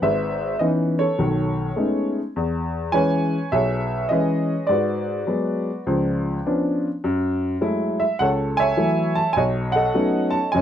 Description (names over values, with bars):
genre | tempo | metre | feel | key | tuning
solo jazz | 103 BPM | 4/4 | swing 67% on 8ths | unclear | A4 = 440 Hz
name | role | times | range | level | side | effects
warm upright piano | solo | 0.0-10.6 s | F#1 to A5 | -19 LUFS | equal | none
room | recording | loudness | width
light reverb | none | -19 LUFS | side -10 dB against mid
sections
0.0-2.4 A section; 2.4-10.6 B section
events
none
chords
0.0 C#m9; 1.2 B13; 2.4 E6; 4.7 G#m7b5; 5.9 C#7b9; 7.0 F#m9; 9.4 B9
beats
| 0.02 0.61 1.19 1.78 | 2.36 2.94 3.53 4.11 | 4.70 5.28 5.87 6.45 | 7.03 7.62 8.20 8.79 | 9.37 9.96 10.54